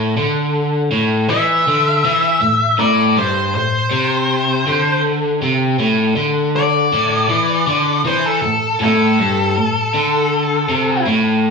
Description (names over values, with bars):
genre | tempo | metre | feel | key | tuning
rock | 80 BPM | 4/4 | straight | A minor | A4 = 440 Hz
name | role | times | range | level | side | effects
crunchy overdriven guitar | riff | 0.0-11.5 s | G2 to E3 | -16 LUFS | equal | none
octave-fuzz lead guitar | melody | 1.3-11.0 s | A4 to E5 | -16 LUFS | left 2 dB | distortion
room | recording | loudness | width
wet large studio reverb, RT60 1.0 s | band playing live in one room, small room ambience | -13 LUFS | side -4 dB against mid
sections
0.0-11.5 A section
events
none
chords
0.0 Am